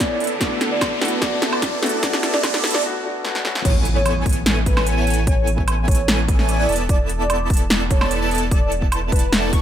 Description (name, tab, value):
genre	future bass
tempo	148 BPM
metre	4/4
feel	half-time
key	A major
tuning	A4 = 440 Hz
part	warm velvety synth lead	melody	0.0-9.3 s	B4 to D5	-26 LUFS	equal	chorus, sidechain pumping, digital delay
part	dark concert grand piano	accompaniment	0.0-3.7 s	A3 to F#4	-29 LUFS	left 4 dB	sidechain pumping, dub echo
part	clear studio string section	sustained chords	0.0-2.8 s	C#3 to G#5	-37 LUFS	left 1 dB	none
part	soft supersaw	riff	0.0-9.6 s	B3 to C#6	-25 LUFS	right 2 dB	sidechain pumping
part	saturated sub bass	bass	0.0-9.6 s	E1 to A1	-22 LUFS	equal	sidechain pumping, high-pass filter
part	big-room dance drum kit	drums	0.0-9.6 s	crash cymbal, hi-hat, snare drum, woodblock	-22 LUFS	equal	overdrive
part	electronic kick drum	drums	0.0-9.6 s	none	-19 LUFS	equal	none
part	riser and impact	sound effects	0.0-5.3 s	none	-28 LUFS	equal	none
part	airy dreamy lead	arpeggios	3.6-9.6 s	G#5 to C#6	-29 LUFS	equal	chorus, sidechain pumping
room	light reverb, digital ambience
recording	high-pass filter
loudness	-16 LUFS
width	side -10 dB against mid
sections	0.0-3.6 A section; 3.6-9.6 B section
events	build-up 0.0-3.6; drum fill 0.0-2.8, 3.2-3.6; riser 0.0-2.8; filter sweep on supersaw synth 0.0-3.6; break 2.8-3.6; drop 3.6-9.6; impact 3.6-5.3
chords	0.2 E7sus4; 3.4 Aadd9; 3.6 Amaj9; 6.7 E7sus4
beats	0.00 | 0.41 0.81 1.22 1.62 | 2.03 2.43 2.84 3.24 | 3.65 4.05 4.46 4.87 | 5.27 5.68 6.08 6.49 | 6.89 7.30 7.70 8.11 | 8.51 8.92 9.32